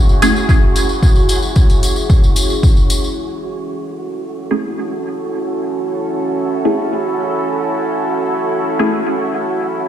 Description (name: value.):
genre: dub techno.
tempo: 112 BPM.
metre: 4/4.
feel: straight.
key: F# minor.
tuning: A4 = 440 Hz.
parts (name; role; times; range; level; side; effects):
deep dark ambient pad; sustained chords; 0.0-9.9 s; C#4 to A4; -19 LUFS; right 1 dB; chorus, built-in reverb, sidechain pumping.
wind-like tuned noise texture; texture; 0.0-9.9 s; F#4; -26 LUFS; right 3 dB; built-in reverb, sidechain pumping.
tambourine; percussion; 0.1-3.1 s; none; -24 LUFS; left 2 dB; none.
filtered dub chord stab; stabs; 0.2-0.4, 4.5-9.0 s; A3 to G#4; -18 LUFS; equal; phaser, sidechain pumping, dub echo.
electronic hi-hat; drums; 0.2-3.0 s; none; -26 LUFS; left 3 dB; none.
electronic kick drum; drums; 0.5-2.7 s; none; -12 LUFS; equal; none.
room: light reverb.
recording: played on a big sound system in a bare room, stone room reverb.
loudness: -13 LUFS.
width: side -10 dB against mid.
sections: 0.0-3.2 A section; 3.2-9.9 B section.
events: filter sweep on synth stab 3.2-9.9.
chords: 0.0 F#m7.